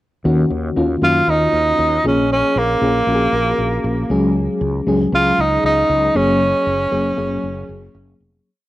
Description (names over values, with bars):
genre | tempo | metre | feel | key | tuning
1980s-style pop | 117 BPM | 4/4 | straight | Eb minor | A4 = 441 Hz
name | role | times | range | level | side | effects
FM electric piano with tremolo | accompaniment | 0.2-8.5 s | Eb3 to Ab4 | -19 LUFS | left 1 dB | cassette tape
fretless electric bass | bass | 0.3-8.4 s | F1 to Gb2 | -23 LUFS | equal | tube saturation
breathy tenor saxophone | melody | 1.0-8.0 s | Bb3 to F4 | -16 LUFS | right 1 dB | plate reverb
room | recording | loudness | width
wet booth ambience, RT60 0.2 s | home recording on cassette | -14 LUFS | side -16 dB against mid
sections
0.3-8.5 verse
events
fade-out 6.4-8.5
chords
0.3 Ebm7; 2.0 Bbm7; 4.1 Dbsus4; 6.2 Gbadd9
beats
| 0.26 0.77 1.28 1.79 | 2.31 2.82 3.33 3.85 | 4.36 4.87 5.38 5.90 | 6.41 6.92 7.43 7.95